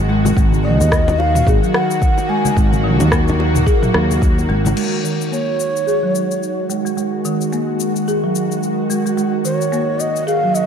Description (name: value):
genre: organic downtempo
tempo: 109 BPM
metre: 4/4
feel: swing 58% on 16ths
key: unclear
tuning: A4 = 440 Hz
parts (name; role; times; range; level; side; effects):
- bowed-like drone; sustained chords; 0.0-10.7 s; G#2 to F#4; -21 LUFS; equal; built-in reverb, sidechain pumping
- sustaining fretless electric bass; bass; 0.0-4.7 s; G#1 to D#2; -16 LUFS; equal; sidechain pumping
- folk marimba with soft mallets; arpeggios; 0.1-10.5 s; D#3 to G#4; -21 LUFS; right 1 dB; low-pass filter, ping-pong delay
- bongos and congas; percussion; 0.1-4.8 s; none; -24 LUFS; left 4 dB; none
- deep house drum kit; drums; 0.3-10.7 s; cabasa, crash cymbal, rim click, toms; -24 LUFS; left 1 dB; none
- electronic kick drum; drums; 0.4-4.3 s; none; -16 LUFS; equal; none
- mellow bansuri; melody; 0.6-10.7 s; C#5 to G#5; -20 LUFS; right 1 dB; ping-pong delay
room: moderate lush hall reverb, RT60 1.9 s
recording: none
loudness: -14 LUFS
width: side -7 dB against mid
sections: 0.0-4.8 A section; 4.8-10.7 B section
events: filter sweep on marimba 4.8-10.7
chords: 0.0 D#m/G#; 4.8 G#5; 9.2 D#m/G#